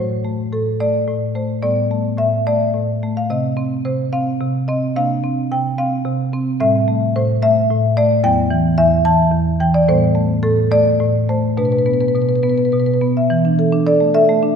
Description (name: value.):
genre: classical, contemporary piece for solo marimba.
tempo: 72 BPM (dotted quarters).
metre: 6/8.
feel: straight.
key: E minor from 6.6 s.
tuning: A4 = 441 Hz.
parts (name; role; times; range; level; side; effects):
marimba with medium mallets; solo; 0.0-14.6 s; E2 to A5; -14 LUFS; equal; none.
room: wet scoring stage reverb, RT60 1.6 s.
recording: minimal, uncompressed stereo recording.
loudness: -14 LUFS.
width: side -7 dB against mid.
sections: 0.0-13.3 A section; 13.3-14.6 B section.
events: none.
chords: 0.0 Am6; 1.6 Gadd9/A; 3.3 Cm6; 5.0 Bbadd9/C; 6.6 Am7; 8.2 Emadd9; 9.9 Am9; 11.6 Bm7; 13.3 E7sus4.